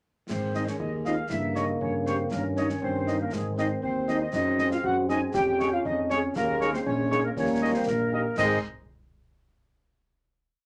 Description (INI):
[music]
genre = military-style march for wind band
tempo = 119 BPM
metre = 2/4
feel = straight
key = Ab major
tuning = A4 = 440 Hz
[part]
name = mellow woodwind section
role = second line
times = 0.3-8.6 s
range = Ab4 to Ab5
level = -36 LUFS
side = equal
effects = none
[part]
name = warm euphonium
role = second line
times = 0.3-8.6 s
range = Ab3 to Ab4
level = -33 LUFS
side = equal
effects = none
[part]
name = mellow trombone section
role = sustained chords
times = 0.3-8.6 s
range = Db3 to Db4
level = -34 LUFS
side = equal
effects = none
[part]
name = mellow tuba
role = bass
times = 0.3-8.6 s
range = Bb1 to Ab2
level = -33 LUFS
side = equal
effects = none
[part]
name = concert snare drum, clash cymbals and concert bass drum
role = drums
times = 0.3-8.7 s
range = none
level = -41 LUFS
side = equal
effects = none
[part]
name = warm cornet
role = melody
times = 0.6-8.6 s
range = Db5 to Eb5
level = -32 LUFS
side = equal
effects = none
[part]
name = warm French horn section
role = accompaniment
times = 0.6-8.6 s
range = Ab3 to Ab4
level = -35 LUFS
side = equal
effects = none
[sound]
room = moderate studio reverb, RT60 0.5 s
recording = none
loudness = -27 LUFS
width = mono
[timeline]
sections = 0.3-8.4 A section; 8.4-9.4 final chord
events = none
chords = 0.3 Ab; 1.3 Gdim; 2.3 Eb7/G; 3.3 Ab; 4.3 Ab7/Gb; 5.3 Db/F; 6.4 Eb7sus4; 7.4 Eb; 8.4 Ab5